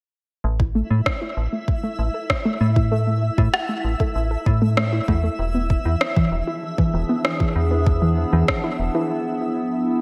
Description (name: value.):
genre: IDM.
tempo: 97 BPM.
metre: 4/4.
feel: straight.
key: unclear.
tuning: A4 = 440 Hz.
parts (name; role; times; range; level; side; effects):
warbly dusty pluck; arpeggios; 0.4-9.1 s; E3 to A4; -27 LUFS; equal; chorus, digital delay.
metallic FM bass; bass; 0.4-8.9 s; E1 to A2; -23 LUFS; equal; tube saturation.
twinkling granular texture; texture; 0.9-9.1 s; E4 to E5; -33 LUFS; equal; built-in reverb.
electronic kick drum; drums; 0.6-8.6 s; none; -24 LUFS; equal; overdrive, small room ambience.
electronic rim click; drums; 1.1-8.6 s; none; -27 LUFS; equal; overdrive, small room ambience, digital delay, slapback echo.
warbly tape-like pad; sustained chords; 6.5-10.0 s; F3 to G#4; -28 LUFS; equal; chorus, built-in reverb, phaser, sidechain pumping.
room: wet recital hall reverb, RT60 1.6 s.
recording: big arena sound.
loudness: -21 LUFS.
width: mono.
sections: 0.4-10.0 A section.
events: filter sweep on synth arpeggio sound 0.4-10.0; break 9.1-10.0.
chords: 0.4 A5; 5.4 E7b9.